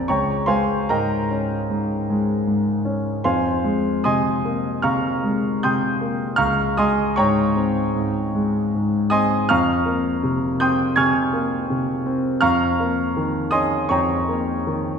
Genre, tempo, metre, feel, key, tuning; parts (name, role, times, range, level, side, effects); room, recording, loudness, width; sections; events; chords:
classical, impressionist solo piano; 73-84 BPM; 4/4; rubato; F minor; A4 = 440 Hz
clear concert grand piano; solo; 0.0-15.0 s; Db2 to Ab6; -18 LUFS; equal
wet concert hall reverb, RT60 1.7 s; heard from further back in the room, faint mains hum; -18 LUFS; side -6 dB against mid
0.0-15.0 A section
0.1 Db69; 3.2 Fm11; 6.4 Dbmaj9; 9.5 Fm11